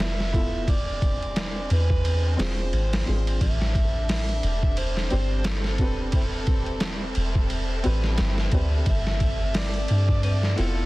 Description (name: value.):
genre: trip hop.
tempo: 88 BPM.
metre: 4/4.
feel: swing 58% on 16ths.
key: A minor.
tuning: A4 = 440 Hz.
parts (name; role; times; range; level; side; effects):
overdriven harmonica; melody; 0.0-10.9 s; C4 to E5; -33 LUFS; right 1 dB; tape echo.
warm upright piano; accompaniment; 0.0-10.9 s; B3 to C5; -33 LUFS; equal; harmonic tremolo, tape echo.
rich chamber violin section; sustained chords; 0.0-10.9 s; G3 to E5; -37 LUFS; equal; vintage 12-bit sampler grit.
soft 808-style bass; bass; 0.0-10.9 s; E1 to G2; -25 LUFS; equal; tube saturation.
trip hop sampler-style drum kit; drums; 0.0-10.8 s; hi-hat, kick drum, ride cymbal, snare drum; -26 LUFS; equal; none.
bowed-like drone; texture; 4.8-10.9 s; C4; -39 LUFS; right 1 dB; built-in reverb.
room: digital ambience.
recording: dense, heavily limited modern master, vinyl crackle.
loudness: -22 LUFS.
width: side -20 dB against mid.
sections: 0.0-10.9 A section.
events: none.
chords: 0.0 G13 (rootless); 0.7 E7b9b13; 3.4 Am11; 8.9 G13.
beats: 0.00 | 0.68 1.36 2.04 2.73 | 3.41 4.09 4.77 5.45 | 6.13 6.82 7.50 8.18 | 8.86 9.54 10.23.